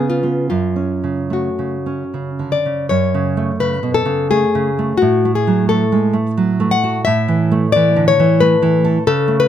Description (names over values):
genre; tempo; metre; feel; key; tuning
romantic duo for nylon-string guitar and classical guitar; 73-93 BPM; 3/4; rubato; F# minor; A4 = 441 Hz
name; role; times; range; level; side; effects
nylon-string guitar; melody; 0.0-9.5 s; E#4 to F#5; -17 LUFS; left 6 dB; none
nylon-string guitar; accompaniment; 0.0-9.5 s; F#2 to A4; -16 LUFS; right 4 dB; none
room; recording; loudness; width
light reverb; close, detailed microphones; -14 LUFS; side -10 dB against mid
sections
0.0-2.9 A section; 2.9-9.5 B section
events
none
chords
0.0 C#7; 0.5 F#m; 5.0 F#m/A; 7.1 A5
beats
| 0.51 1.33 2.14 | 2.90 3.59 4.30 | 5.01 5.70 6.38 | 7.07 7.75 8.42 | 9.07